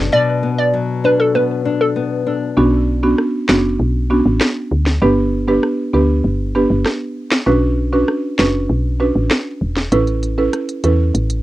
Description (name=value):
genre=dancehall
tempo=98 BPM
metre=4/4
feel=straight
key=B minor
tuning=A4 = 440 Hz
part: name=nylon-string guitar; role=arpeggios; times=0.0-3.1 s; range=B2 to D4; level=-19 LUFS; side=left 5 dB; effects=none
part: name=woody FM bass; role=bass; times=0.0-11.4 s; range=E1 to E2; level=-17 LUFS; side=equal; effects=none
part: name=hollow square pluck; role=melody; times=0.1-1.9 s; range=A4 to D5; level=-16 LUFS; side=equal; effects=chorus, cassette tape, analog delay
part: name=buzzing marimba with medium mallets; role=accompaniment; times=2.6-11.1 s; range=B3 to B4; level=-17 LUFS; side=right 2 dB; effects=none
part: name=island pop drum kit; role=drums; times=3.2-11.4 s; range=finger snaps, hi-hat, rim click, snare drum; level=-18 LUFS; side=equal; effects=none
room=light reverb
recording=home recording on cassette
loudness=-14 LUFS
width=side -16 dB against mid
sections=0.0-2.6 A section; 2.6-11.4 B section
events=drums muted 0.1-2.6; kick muted 2.6-11.4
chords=0.0 Bm; 2.6 Bmadd9; 5.0 G; 7.5 Bmadd9; 9.9 Aadd9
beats=| 0.12 0.74 1.35 1.96 | 2.57 3.19 3.80 4.41 | 5.02 5.63 6.25 6.86 | 7.47 8.08 8.70 9.31 | 9.92 10.53 11.14